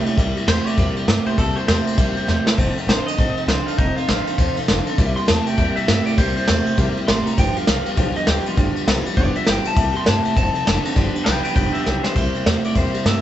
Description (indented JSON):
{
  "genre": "rockabilly",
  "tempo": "200 BPM",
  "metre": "4/4",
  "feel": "swing 61% on 8ths",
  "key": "C mixolydian",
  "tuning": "A4 = 441 Hz",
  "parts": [
    { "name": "electric guitar through a small old amp", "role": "melody", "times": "0.0-13.2 s", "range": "Eb4 to C6", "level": "-25 LUFS", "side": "left 1 dB", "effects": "spring reverb" },
    { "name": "picked steel-string acoustic guitar", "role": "accompaniment", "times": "0.0-13.2 s", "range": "G2 to A4", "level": "-27 LUFS", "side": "left 3 dB", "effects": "none" },
    { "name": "electric guitar through a small old amp", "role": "riff", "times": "0.0-13.2 s", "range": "F2 to A3", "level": "-24 LUFS", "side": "right 3 dB", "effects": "none" },
    { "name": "upright bass", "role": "bass", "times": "0.1-13.2 s", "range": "F1 to G2", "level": "-24 LUFS", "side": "equal", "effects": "none" },
    { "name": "vintage brush drum kit", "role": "drums", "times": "0.1-13.1 s", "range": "crash cymbal, kick drum, ride cymbal, snare drum", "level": "-20 LUFS", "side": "equal", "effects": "none" }
  ],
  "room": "light reverb",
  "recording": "band playing live in one room, nothing above 8.0 kHz",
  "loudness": "-16 LUFS",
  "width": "side -12 dB against mid",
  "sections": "0.0-12.2 A section; 12.2-13.2 B section",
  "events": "clean electric guitar solo 0.0-12.2; drum fill 2.3-2.6, 11.9",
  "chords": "0.0 C7; 2.6 F7; 5.0 C7; 7.4 G7; 9.8 C7; 10.4 F7; 11.0 G7; 12.2 C7"
}